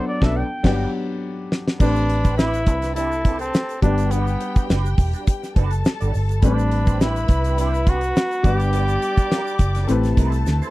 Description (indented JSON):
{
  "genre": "lush 1970s-style soul",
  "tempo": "104 BPM",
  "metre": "4/4",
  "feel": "swing 54% on 16ths",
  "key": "A dorian",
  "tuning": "A4 = 440 Hz",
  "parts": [
    { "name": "clear flugelhorn", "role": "melody", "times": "0.0-10.2 s", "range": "B3 to G5", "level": "-24 LUFS", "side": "equal", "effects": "none" },
    { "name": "clear concert grand piano", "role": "accompaniment", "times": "0.0-10.7 s", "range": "F#3 to F#5", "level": "-26 LUFS", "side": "left 3 dB", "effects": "none" },
    { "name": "dark studio string section", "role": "second line", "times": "0.2-10.7 s", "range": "D4 to D6", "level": "-32 LUFS", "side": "left 2 dB", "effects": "none" },
    { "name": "mellow electric guitar", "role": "riff", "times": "0.2-10.7 s", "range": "G3 to D5", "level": "-33 LUFS", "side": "right 8 dB", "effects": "wah" },
    { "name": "vintage muted fingered electric bass", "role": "bass", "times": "0.2-10.6 s", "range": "E1 to D2", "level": "-21 LUFS", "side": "equal", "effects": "none" },
    { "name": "damped 70s drum kit", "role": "drums", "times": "0.2-10.6 s", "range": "crash cymbal, hi-hat, kick drum, snare drum", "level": "-18 LUFS", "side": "equal", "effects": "none" },
    { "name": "egg shaker", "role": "percussion", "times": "1.8-10.7 s", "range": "none", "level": "-44 LUFS", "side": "right 20 dB", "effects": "none" }
  ],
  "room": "little or no reverb",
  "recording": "dry, close 1970s-style studio recording",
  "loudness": "-18 LUFS",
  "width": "side -18 dB against mid",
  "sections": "0.0-1.8 A section; 1.8-10.7 B section",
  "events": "band accent 0.0-1.8; flugelhorn solo 0.0-1.8; drum fill 1.2-1.8, 10.5",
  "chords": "0.4 Gmaj7; 1.8 Am11; 3.8 Gmaj7; 6.4 Am11; 8.4 Gmaj7; 9.9 Am9"
}